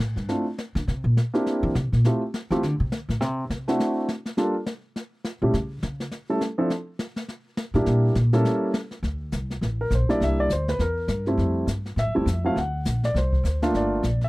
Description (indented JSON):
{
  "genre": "jazz piano trio",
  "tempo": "205 BPM",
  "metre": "4/4",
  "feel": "swing 60% on 8ths",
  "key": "D minor",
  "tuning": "A4 = 442 Hz",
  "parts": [
    { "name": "upright bass", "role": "bass", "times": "0.0-14.3 s", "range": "G1 to E3", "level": "-24 LUFS", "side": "equal", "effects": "none" },
    { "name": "jazz brush drum kit", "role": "drums", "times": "0.0-14.3 s", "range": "brushed snare drum, hi-hat, kick drum, snare drum", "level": "-31 LUFS", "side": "left 1 dB", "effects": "none" },
    { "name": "warm baby grand piano", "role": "melody", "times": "0.3-14.3 s", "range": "F3 to F#5", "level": "-24 LUFS", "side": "equal", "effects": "none" }
  ],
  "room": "little or no reverb",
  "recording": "dry, close 1970s-style studio recording",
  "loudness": "-22 LUFS",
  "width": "side -21 dB against mid",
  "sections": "0.0-9.0 A section; 9.0-14.3 B section",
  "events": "upright bass solo 0.0-9.0",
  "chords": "0.0 D5; 0.9 C7; 2.0 Fmaj7; 3.2 D7; 4.4 Gm; 5.5 A; 6.7 N.C.; 7.3 Gmadd9/A; 7.9 Em7b5; 8.4 A7b9; 9.0 D5; 10.2 C7; 11.4 Fmaj7; 12.6 D7; 13.7 Gm7"
}